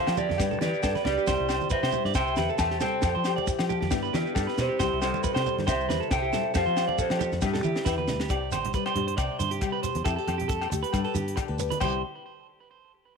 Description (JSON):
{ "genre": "highlife guitar band", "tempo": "137 BPM", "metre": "4/4", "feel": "swing 54% on 16ths", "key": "C major", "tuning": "A4 = 440 Hz", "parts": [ { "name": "electric guitar at the edge of break-up", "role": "melody", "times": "0.0-7.8 s", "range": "G4 to A5", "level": "-28 LUFS", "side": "right 1 dB", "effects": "wide subtle chorus" }, { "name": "nylon-string guitar", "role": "accompaniment", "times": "0.0-12.0 s", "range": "C3 to D5", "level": "-33 LUFS", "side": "left 13 dB", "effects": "none" }, { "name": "clean electric guitar", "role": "arpeggios", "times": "0.0-12.0 s", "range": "E4 to D5", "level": "-32 LUFS", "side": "right 12 dB", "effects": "none" }, { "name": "fingered electric bass", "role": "bass", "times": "0.1-12.0 s", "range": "A1 to F3", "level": "-31 LUFS", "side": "equal", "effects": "none" }, { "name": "tight funk drum kit", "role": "drums", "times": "0.1-11.9 s", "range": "crash cymbal, hi-hat, kick drum, rim click, snare drum", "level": "-32 LUFS", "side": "equal", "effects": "none" }, { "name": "agogo bells", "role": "percussion", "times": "0.1-11.9 s", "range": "none", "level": "-36 LUFS", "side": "left 15 dB", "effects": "none" }, { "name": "shekere", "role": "percussion", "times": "0.1-12.0 s", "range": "none", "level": "-37 LUFS", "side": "right 5 dB", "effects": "none" }, { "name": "congas", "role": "percussion", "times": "0.2-12.0 s", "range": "none", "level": "-37 LUFS", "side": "right 8 dB", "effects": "none" } ], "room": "light reverb, studio reverb", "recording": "1960s-style stereo with parts hard left and right", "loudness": "-24 LUFS", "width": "side -5 dB against mid", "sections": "0.0-8.3 A section; 8.3-11.8 B section; 11.8-13.2 C section", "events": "drum fill 7.4-8.3", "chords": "0.4 G6; 1.3 C; 3.0 Fadd9; 3.9 G6; 4.8 C; 6.5 Fadd9; 7.4 G6; 8.3 C5; 10.1 Fadd9; 10.9 G; 11.8 C" }